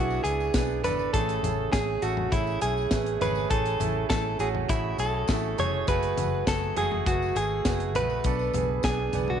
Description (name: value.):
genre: piano-driven pop.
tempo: 101 BPM.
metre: 4/4.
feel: straight.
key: A major.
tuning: A4 = 439 Hz.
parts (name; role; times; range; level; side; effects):
direct-recorded clean electric guitar; melody; 0.0-9.4 s; E4 to C#5; -28 LUFS; left 1 dB; spring reverb.
clear concert grand piano; accompaniment; 0.0-9.4 s; A2 to B4; -31 LUFS; right 11 dB; none.
vintage muted fingered electric bass; bass; 0.0-9.4 s; F1 to C#2; -31 LUFS; left 2 dB; none.
tambourine; percussion; 0.1-9.3 s; none; -47 LUFS; left 18 dB; none.
modern studio drum kit; drums; 0.2-9.4 s; hi-hat, kick drum, snare drum, toms; -30 LUFS; left 2 dB; none.
room: light reverb, small room ambience.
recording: 1960s-style stereo with parts hard left and right, nothing above 10.6 kHz.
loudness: -24 LUFS.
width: side -8 dB against mid.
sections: 0.0-9.4 A section.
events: none.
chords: 0.0 Bm7; 1.1 Amaj7; 5.9 F#madd9; 8.3 Bm7.